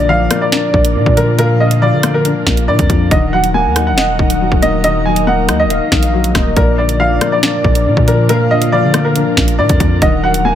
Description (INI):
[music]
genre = hip hop, drill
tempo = 139 BPM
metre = 4/4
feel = half-time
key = unclear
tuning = A4 = 440 Hz
[part]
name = bright upright piano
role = melody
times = 0.0-10.6 s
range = Bb4 to Ab5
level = -17 LUFS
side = right 1 dB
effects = tape echo
[part]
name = warm velvety synth lead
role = second line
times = 0.0-10.6 s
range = D5 to Gb5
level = -20 LUFS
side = right 1 dB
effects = chorus, tape echo
[part]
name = felt-muted upright piano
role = accompaniment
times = 0.0-10.6 s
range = Bb2 to Eb5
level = -17 LUFS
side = left 6 dB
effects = none
[part]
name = ethereal airy pad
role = sustained chords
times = 0.0-10.6 s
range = F3 to Bb4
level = -22 LUFS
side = equal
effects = ensemble chorus, built-in reverb
[part]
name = long sustained 808-style bass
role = bass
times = 0.0-10.6 s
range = Eb1 to D3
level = -16 LUFS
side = equal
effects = none
[part]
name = drill drum kit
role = drums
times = 0.3-10.4 s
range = hi-hat, kick drum, rim click, snare drum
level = -15 LUFS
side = equal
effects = none
[sound]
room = digital ambience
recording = none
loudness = -10 LUFS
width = side -10 dB against mid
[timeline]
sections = 0.0-6.6 A section; 6.6-10.6 A section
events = none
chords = 0.0 Bb; 3.1 Ebm; 6.6 Bb; 10.0 Ebm